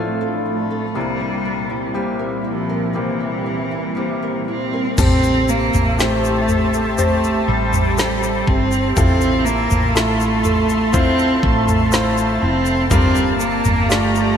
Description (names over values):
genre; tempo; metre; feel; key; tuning
pop ballad; 60 BPM; 4/4; straight; F major; A4 = 441 Hz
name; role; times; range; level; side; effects
clear concert grand piano; accompaniment; 0.0-14.4 s; A1 to D5; -24 LUFS; left 4 dB; none
lush unison pad; sustained chords; 0.0-14.4 s; A2 to C6; -24 LUFS; right 1 dB; chorus
flamenco guitar; arpeggios; 0.0-14.4 s; A2 to Bb4; -30 LUFS; right 5 dB; ensemble chorus
warm cello; melody; 0.5-14.4 s; E3 to C4; -20 LUFS; right 1 dB; none
woody fretless electric bass; bass; 5.0-14.4 s; F1 to A1; -22 LUFS; equal; lush chorus
smooth R&B drum kit; drums; 5.0-14.1 s; crash cymbal, kick drum, snare drum, toms; -20 LUFS; equal; gated reverb
egg shaker; percussion; 5.0-14.4 s; none; -33 LUFS; left 10 dB; none
room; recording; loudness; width
moderate lush hall reverb, RT60 2.6 s; bright 1980s-style digital production, lossy compression artefacts; -15 LUFS; side -8 dB against mid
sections
0.0-5.0 A section; 5.0-14.4 B section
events
none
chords
0.0 Fmaj7/A; 1.0 C7; 5.0 Am7; 9.0 Fmaj7/A; 12.9 Gm7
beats
| 0.96 1.95 2.95 3.97 | 4.98 5.99 6.99 7.98 | 8.97 9.95 10.94 11.93 | 12.91 13.91